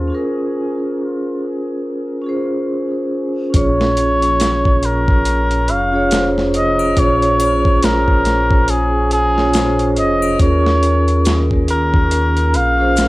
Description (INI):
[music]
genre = trip hop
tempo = 70 BPM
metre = 4/4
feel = swing 59% on 16ths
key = Bb minor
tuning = A4 = 444 Hz
[part]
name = vibraphone with medium hard mallets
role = accompaniment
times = 0.0-13.1 s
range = Db4 to Db5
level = -18 LUFS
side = equal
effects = harmonic tremolo, vintage 12-bit sampler grit, cassette tape, tape echo
[part]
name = dark detuned saw bass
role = bass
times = 0.0-13.1 s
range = F1 to Eb2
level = -18 LUFS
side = equal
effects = tube saturation
[part]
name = dusty soul sampler-style drum kit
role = drums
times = 3.5-13.1 s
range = hi-hat, kick drum, snare drum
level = -18 LUFS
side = equal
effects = overdrive, studio ambience, cassette tape
[part]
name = trumpet with cup mute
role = melody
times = 3.6-13.1 s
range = Ab4 to F5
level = -18 LUFS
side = equal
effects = vintage 12-bit sampler grit, cassette tape, dub echo
[part]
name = maracas and triangle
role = percussion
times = 4.4-13.1 s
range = none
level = -32 LUFS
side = left 10 dB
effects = none
[sound]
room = light reverb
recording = home recording on cassette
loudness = -13 LUFS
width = side -20 dB against mid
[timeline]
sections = 0.0-3.5 A section; 3.5-13.1 B section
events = break 0.1-3.5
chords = 0.0 Eb7sus4 (rootless); 3.5 Bbm7; 10.4 Eb7sus4